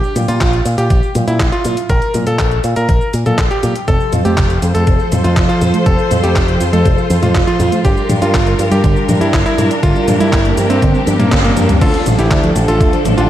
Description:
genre	italo disco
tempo	121 BPM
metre	4/4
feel	straight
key	unclear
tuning	A4 = 440 Hz
part	bright electric grand piano	melody	0.0-13.3 s	Bb3 to Bb4	-18 LUFS	equal	diffuse ambient delay
part	detuned 8-bit digital drum machine	drums	0.0-13.3 s	cabasa, crash cymbal, handclaps, hi-hat, toms	-20 LUFS	left 1 dB	none
part	picked electric bass with an envelope filter	bass	0.2-13.3 s	F1 to Bb2	-16 LUFS	equal	none
part	electronic kick drum	drums	0.4-12.9 s	none	-16 LUFS	equal	none
part	rich studio string section	sustained chords	3.9-13.3 s	D3 to C5	-18 LUFS	equal	none
part	analog pluck	arpeggios	3.9-13.2 s	C3 to A3	-20 LUFS	right 2 dB	chorus, analog delay
part	riser	sound effects	9.6-11.8 s	none	-24 LUFS	equal	none
room	moderate plate reverb, RT60 1.5 s, digital ambience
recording	dreamy mix soaked in reverb, vinyl crackle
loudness	-11 LUFS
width	side -12 dB against mid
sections	0.0-11.8 A section; 11.8-13.3 B section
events	band accent 11.3; drum fill 11.4-11.8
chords	0.0 N.C.; 3.9 F; 7.8 Gm7; 11.8 Dm

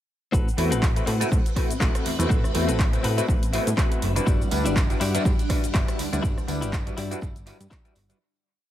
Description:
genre	filtered disco house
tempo	122 BPM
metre	4/4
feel	swing 56% on 16ths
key	A dorian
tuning	A4 = 440 Hz
part	string machine, full ensemble	sustained chords	0.3-8.2 s	G3 to F#5	-33 LUFS	equal	phaser, ensemble chorus, sidechain pumping
part	direct-recorded clean electric guitar	riff	0.3-8.0 s	C4 to D5	-34 LUFS	left 5 dB	sidechain pumping, dub echo
part	plucky analog bass	bass	0.3-8.1 s	F#1 to A2	-27 LUFS	equal	sidechain pumping
part	electronic kick drum	drums	0.3-7.8 s	none	-23 LUFS	equal	none
part	house drum kit	drums	0.3-8.2 s	handclaps, hi-hat, rim click, shaker	-32 LUFS	equal	overdrive, sidechain pumping on perc, sidechain pumping on hats, dub echo
part	overdriven clav	accompaniment	0.6-8.2 s	G3 to F#5	-29 LUFS	left 1 dB	phaser, sidechain pumping
part	tambourine	percussion	4.3-8.2 s	none	-43 LUFS	right 3 dB	sidechain pumping on perc, dub echo
room	light reverb, digital ambience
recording	echo-heavy mix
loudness	-21 LUFS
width	side -12 dB against mid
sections	0.3-8.2 drop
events	drop 0.3-8.2; fade-out 5.6-8.2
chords	0.3 Am69; 4.3 Em9/G

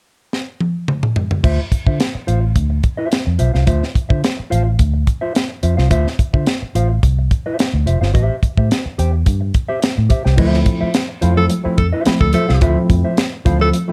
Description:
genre	funk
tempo	107 BPM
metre	4/4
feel	straight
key	D minor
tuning	A4 = 439 Hz
part	tight funk drum kit	drums	0.3-13.9 s	crash cymbal, hi-hat, kick drum, snare drum, toms	-19 LUFS	equal	none
part	mellow electric guitar	accompaniment	1.4-13.9 s	F4 to G5	-26 LUFS	equal	none
part	vintage muted fingered electric bass	bass	1.4-13.7 s	F1 to D3	-18 LUFS	equal	none
part	tine electric piano	stabs	10.4-13.9 s	F3 to E4	-22 LUFS	equal	subtle chorus
part	congas	percussion	10.4-13.9 s	none	-27 LUFS	equal	none
part	breathy tenor saxophone	second line	11.4-13.7 s	A4	-22 LUFS	equal	none
room	light reverb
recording	dark, warm production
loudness	-16 LUFS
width	mono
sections	0.0-1.4 A section; 1.4-10.4 B section; 10.4-13.9 C section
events	drum fill 0.3-1.4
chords	0.0 N.C.; 1.4 Dm9; 8.1 Am7; 10.4 Dm9

